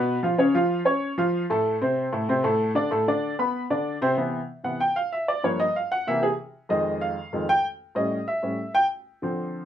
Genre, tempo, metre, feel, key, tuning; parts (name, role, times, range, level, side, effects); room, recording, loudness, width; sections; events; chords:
jazz; 190 BPM; 4/4; straight; A minor; A4 = 440 Hz
warm upright piano; solo; 0.0-9.7 s; F2 to C#6; -22 LUFS; equal
moderate studio ambience, RT60 0.5 s; -22 LUFS; side -10 dB against mid
0.0-4.2 A section; 4.2-9.7 B section
upright piano solo 4.2-9.7
0.4 Aaug; 1.6 D5; 2.9 Bm7; 3.5 Csus2; 4.2 Cmaj7; 5.4 Gm7b5; 6.1 C7b13; 6.7 Fm7; 8.0 A7